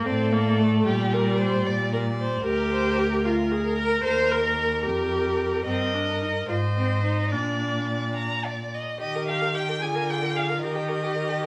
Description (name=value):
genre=quick classical-period movement for string quartet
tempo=74 BPM (dotted quarters)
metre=6/8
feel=straight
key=Eb major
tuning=A4 = 436 Hz
part: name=rich violin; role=melody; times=0.0-11.5 s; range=Bb4 to Ab5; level=-34 LUFS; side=equal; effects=none
part: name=warm violin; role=second line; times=0.0-11.5 s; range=G4 to Bb5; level=-32 LUFS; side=equal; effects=none
part: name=warm viola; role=accompaniment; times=0.0-11.4 s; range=G3 to C5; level=-29 LUFS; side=equal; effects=none
part: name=rich cello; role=bass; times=0.1-11.5 s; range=D2 to Eb3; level=-30 LUFS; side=equal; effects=none
room=moderate stone room reverb, RT60 1.2 s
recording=none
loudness=-25 LUFS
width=mono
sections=0.0-9.0 A section; 9.0-11.5 B section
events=none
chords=0.1 D5/A; 0.9 Gm/Bb; 2.4 Bb/D; 4.0 Eb; 5.7 Eb/G; 6.5 Ab; 7.3 Bb; 9.0 Eb; 9.8 Bb7/D; 10.6 Eb